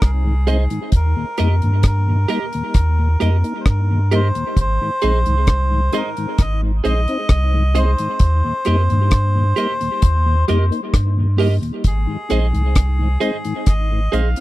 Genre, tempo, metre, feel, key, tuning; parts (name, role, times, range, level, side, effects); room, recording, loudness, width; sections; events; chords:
roots reggae; 66 BPM; 4/4; straight; Ab major; A4 = 444 Hz
melodica; melody; 0.0-14.4 s; Ab4 to F5; -24 LUFS; equal; dub echo
warm sub bass; bass; 0.0-14.3 s; Ab1 to G2; -16 LUFS; equal
deep reggae drum kit; drums; 0.0-14.4 s; hi-hat, kick drum, rim click; -16 LUFS; equal
mellow tonewheel organ; accompaniment; 0.2-14.4 s; Eb2 to Eb4; -25 LUFS; left 3 dB; chorus vibrato, slow rotary speaker, dub echo
clean electric guitar; accompaniment; 0.5-14.3 s; G4 to Eb5; -24 LUFS; right 6 dB; tube saturation, lush chorus, dub echo
little or no reverb; dry, close 1970s-style studio recording; -15 LUFS; side -17 dB against mid
0.0-14.4 A section
0.0 Ab; 0.9 Eb; 4.6 Ab; 8.2 Eb; 11.8 Ab